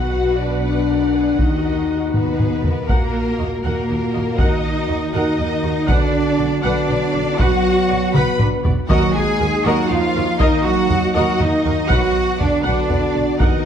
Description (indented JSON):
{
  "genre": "cinematic, epic orchestral film score",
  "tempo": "80 BPM (dotted quarters)",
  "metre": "6/8",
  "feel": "straight",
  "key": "Eb harmonic minor",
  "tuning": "A4 = 440 Hz",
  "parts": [
    { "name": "warm symphonic violin section", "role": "melody", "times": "0.0-13.7 s", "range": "Bb4 to B5", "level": "-28 LUFS", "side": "left 3 dB", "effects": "none" },
    { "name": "rich symphonic violin section", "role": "second line", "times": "0.0-13.7 s", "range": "F#4 to B5", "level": "-29 LUFS", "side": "left 2 dB", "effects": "none" },
    { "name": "warm symphonic viola section", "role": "accompaniment", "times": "0.0-13.6 s", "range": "D4 to F#5", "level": "-26 LUFS", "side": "equal", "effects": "none" },
    { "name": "mellow French horn section", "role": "sustained chords", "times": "0.0-13.7 s", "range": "Bb3 to Gb4", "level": "-23 LUFS", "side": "left 5 dB", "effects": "none" },
    { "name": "rich symphonic cello section", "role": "bass", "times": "0.0-13.7 s", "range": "B2 to B4", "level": "-22 LUFS", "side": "right 3 dB", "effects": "none" },
    { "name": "rich symphonic double bass section", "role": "bass", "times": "0.0-13.5 s", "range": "B1 to Eb2", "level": "-24 LUFS", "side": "right 3 dB", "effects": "none" },
    { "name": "solo taiko drums", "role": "drums", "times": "1.4-13.7 s", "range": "none", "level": "-20 LUFS", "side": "equal", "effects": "none" },
    { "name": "mellow trombone section", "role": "sustained chords", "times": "2.1-13.7 s", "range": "Bb2 to B3", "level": "-24 LUFS", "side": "right 3 dB", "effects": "none" },
    { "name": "timpani", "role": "percussion", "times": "8.9-9.6, 13.4-13.6 s", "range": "Eb3", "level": "-25 LUFS", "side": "left 2 dB", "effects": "none" }
  ],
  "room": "moderate scoring stage reverb, RT60 2.0 s",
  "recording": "dark, warm production",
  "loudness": "-15 LUFS",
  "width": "side -8 dB against mid",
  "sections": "0.0-2.9 A section; 2.9-13.7 A section",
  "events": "drum fill 2.1-2.9, 8.1-8.9; timpani fill 13.4",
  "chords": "0.0 Bm; 1.4 Ebm; 5.9 Bm; 8.9 Ebm; 11.9 Bm"
}